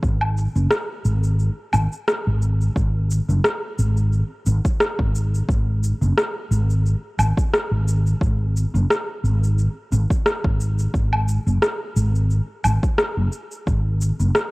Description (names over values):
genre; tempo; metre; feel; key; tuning
organic downtempo; 88 BPM; 4/4; swing 55% on 16ths; unclear; A4 = 440 Hz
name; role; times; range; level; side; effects
mellow fretless electric bass; bass; 0.0-14.3 s; F#1 to G#1; -18 LUFS; equal; ensemble chorus, sidechain pumping
electronic kick drum; drums; 0.0-13.8 s; none; -20 LUFS; equal; overdrive
electronic shaker, woodblock and rim click; drums; 0.0-14.5 s; none; -23 LUFS; equal; overdrive
room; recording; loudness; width
little or no reverb; worn, warbling old tape, cassette tape, warbly pitch drift; -18 LUFS; side -23 dB against mid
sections
0.0-2.8 A section; 2.8-14.5 B section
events
kick drops out 1.4-2.8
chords
none